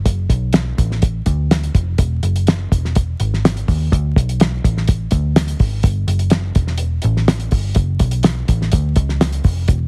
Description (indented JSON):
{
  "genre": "uptempo 1960s-style soul",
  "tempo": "124 BPM",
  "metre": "4/4",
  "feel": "straight",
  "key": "D major",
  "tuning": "A4 = 440 Hz",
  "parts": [
    { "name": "vintage muted picked electric bass", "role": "bass", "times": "0.0-9.9 s", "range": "E1 to Eb2", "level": "-17 LUFS", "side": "equal", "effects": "none" },
    { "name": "cloth-damped thuddy drum kit", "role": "drums", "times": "0.1-9.8 s", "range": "hi-hat, kick drum, snare drum", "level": "-15 LUFS", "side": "equal", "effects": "none" }
  ],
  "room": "little or no reverb",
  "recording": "heavily compressed radio sound, multiband compression, vinyl crackle",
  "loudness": "-14 LUFS",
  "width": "side -39 dB against mid",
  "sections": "0.0-9.9 A section",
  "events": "none",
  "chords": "none"
}